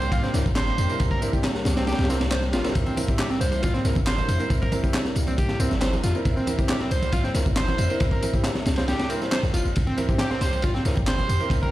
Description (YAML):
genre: breakbeat, breaks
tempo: 137 BPM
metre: 4/4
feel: straight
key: unclear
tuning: A4 = 440 Hz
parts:
  - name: lush unison pad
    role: sustained chords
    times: 0.0-11.7 s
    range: C3 to G4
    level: -33 LUFS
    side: left 1 dB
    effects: chorus, sidechain pumping
  - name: overdriven synth lead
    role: riff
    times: 0.0-11.7 s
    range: C4 to C5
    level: -29 LUFS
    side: right 1 dB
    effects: distortion, digital delay
  - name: warm 808-style bass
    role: bass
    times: 0.0-11.6 s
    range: G1 to E2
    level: -25 LUFS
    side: equal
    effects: none
  - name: crunchy breakbeat drum kit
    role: drums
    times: 0.0-11.7 s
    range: kick drum, ride cymbal, snare drum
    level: -25 LUFS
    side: equal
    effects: none
  - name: electronic tambourine and handclaps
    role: drums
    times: 0.0-11.7 s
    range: none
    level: -35 LUFS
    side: equal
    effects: none
  - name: warm grand piano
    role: stabs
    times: 0.3-11.7 s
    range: C4 to C5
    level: -32 LUFS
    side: right 1 dB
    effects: digital delay
  - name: congas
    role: percussion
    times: 2.9-11.5 s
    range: none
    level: -34 LUFS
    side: right 2 dB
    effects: none
room: little or no reverb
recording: played on a big sound system in a bare room, stone room reverb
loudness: -21 LUFS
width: side -15 dB against mid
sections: 0.0-11.7 A section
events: none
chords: 0.0 C7